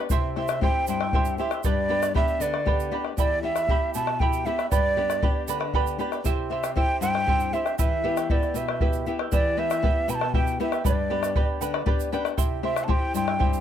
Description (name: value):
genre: andean folk, Andean ensemble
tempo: 78 BPM (dotted quarters)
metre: 6/8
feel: straight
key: E minor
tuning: A4 = 440 Hz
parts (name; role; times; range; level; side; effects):
- charango; accompaniment; 0.0-13.6 s; E4 to C6; -31 LUFS; right 12 dB; none
- flamenco guitar; accompaniment; 0.0-13.6 s; E2 to G5; -30 LUFS; left 9 dB; none
- bombo; percussion; 0.1-13.5 s; none; -26 LUFS; left 1 dB; none
- egg shaker; percussion; 0.1-13.6 s; none; -39 LUFS; right 21 dB; none
- breathy mellow quena; melody; 0.4-13.6 s; D5 to B5; -26 LUFS; right 2 dB; none
room: small room ambience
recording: dry, close 1970s-style studio recording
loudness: -22 LUFS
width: side -10 dB against mid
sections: 0.0-9.3 A section; 9.3-13.6 A section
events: nylon-string guitar fill 11.6-12.4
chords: 0.1 C; 1.6 G; 3.2 Em; 4.7 G; 6.3 C; 7.8 Em; 10.8 G; 12.4 C